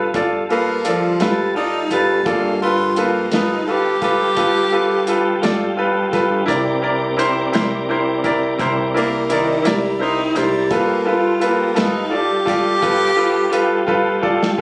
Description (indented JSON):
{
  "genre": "slow blues",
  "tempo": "57 BPM (dotted quarters)",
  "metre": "12/8",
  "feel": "straight",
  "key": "unclear",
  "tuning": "A4 = 440 Hz",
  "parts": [
    { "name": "bright grand piano", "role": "accompaniment", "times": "0.0-14.6 s", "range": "E4 to D5", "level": "-21 LUFS", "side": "equal", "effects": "none" },
    { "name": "tonewheel organ", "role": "sustained chords", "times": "0.0-14.6 s", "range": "G3 to D5", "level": "-26 LUFS", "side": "equal", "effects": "slow rotary speaker, chorus vibrato" },
    { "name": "upright bass", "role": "bass", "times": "0.0-14.6 s", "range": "G1 to C2", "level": "-34 LUFS", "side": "equal", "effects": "none" },
    { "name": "warm soul drum kit", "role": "drums", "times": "0.1-14.6 s", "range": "hi-hat, kick drum, snare drum", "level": "-26 LUFS", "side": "equal", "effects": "none" },
    { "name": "clear tenor saxophone", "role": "second line", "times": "0.5-13.9 s", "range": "Eb3 to G4", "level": "-22 LUFS", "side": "equal", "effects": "none" }
  ],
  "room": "light reverb",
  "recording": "recorded on a phone in the room, studio reverb",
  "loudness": "-18 LUFS",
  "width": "mono",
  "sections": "0.0-14.6 A section",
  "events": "tenor saxophone solo 0.0-14.6; drum fill 13.9-14.6",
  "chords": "0.0 G9; 6.5 C9; 10.7 G9"
}